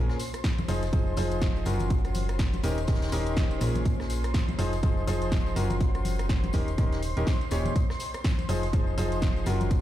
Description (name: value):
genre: piano house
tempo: 123 BPM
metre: 4/4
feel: swing 59% on 16ths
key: unclear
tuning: A4 = 445 Hz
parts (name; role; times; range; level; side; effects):
- analog string pad; sustained chords; 0.0-9.8 s; C5 to C6; -39 LUFS; left 2 dB; ensemble chorus, sidechain pumping
- bright grand piano; riff; 0.0-9.8 s; Bb2 to Db5; -32 LUFS; left 1 dB; sidechain pumping, dub echo
- solid FM bass; bass; 0.0-9.8 s; Eb1 to Bb1; -29 LUFS; equal; sidechain pumping
- punchy analog drum machine; drums; 0.1-9.8 s; hi-hat, rim click, snare drum; -38 LUFS; right 1 dB; none
- vintage brush drum kit; drums; 0.1-9.8 s; hi-hat, snare drum; -47 LUFS; left 2 dB; none
- tambourine and congas; percussion; 0.1-9.8 s; none; -38 LUFS; left 4 dB; none
- electronic kick drum; drums; 0.4-9.8 s; none; -26 LUFS; equal; none
room: studio reverb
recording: played on a big sound system in a bare room, large studio reverb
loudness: -24 LUFS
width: side -13 dB against mid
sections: 0.0-9.8 A section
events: none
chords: 0.0 Bbm7; 0.7 Fm7; 1.7 Gbmaj7; 2.6 Eb7; 3.9 Bbm7; 4.6 Fm7; 5.6 Gbmaj7; 6.5 Eb7; 7.8 N.C.; 8.5 Fm7